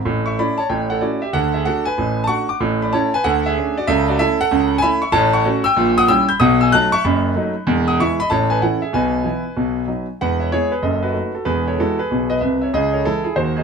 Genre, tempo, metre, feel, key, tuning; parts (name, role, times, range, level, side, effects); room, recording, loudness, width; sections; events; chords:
jazz, stride piano; 190 BPM; 4/4; swing 64% on 8ths; A major, E major from 5.1 s; A4 = 443 Hz
clear concert grand piano; solo; 0.1-13.6 s; E1 to G6; -16 LUFS; equal
moderate studio reverb, RT60 0.8 s; -16 LUFS; side -6 dB against mid
0.1-10.2 A section; 10.2-13.6 B section
0.1 A; 0.7 A7; 1.3 D; 2.6 A; 3.2 Dmaj7; 3.9 A/C#; 5.1 F#m/A; 5.8 A#dim7; 6.4 B7; 7.7 E; 8.3 A; 8.9 E/B; 9.6 B; 10.2 E; 10.8 D#dim/F#; 11.5 E; 12.7 C#m